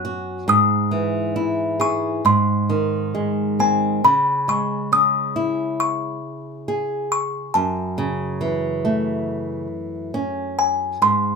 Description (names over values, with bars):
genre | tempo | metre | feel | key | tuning
children's music, lullaby | 68 BPM | 4/4 | straight | C# minor | A4 = 440 Hz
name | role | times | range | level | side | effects
music box | melody | 0.0-11.4 s | G#5 to F#6 | -19 LUFS | left 2 dB | none
flamenco guitar | accompaniment | 0.0-11.4 s | F#2 to G#4 | -22 LUFS | right 1 dB | none
room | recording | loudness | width
light reverb | none | -18 LUFS | side -5 dB against mid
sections
0.0-4.0 A section; 4.0-11.4 B section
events
none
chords
0.5 C#madd9/G# (rootless); 2.2 G#; 4.0 C#m; 7.5 F#m7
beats
| 0.48 1.35 2.24 3.14 | 4.04 4.92 5.80 6.67 | 7.54 8.41 9.27 10.14 | 11.01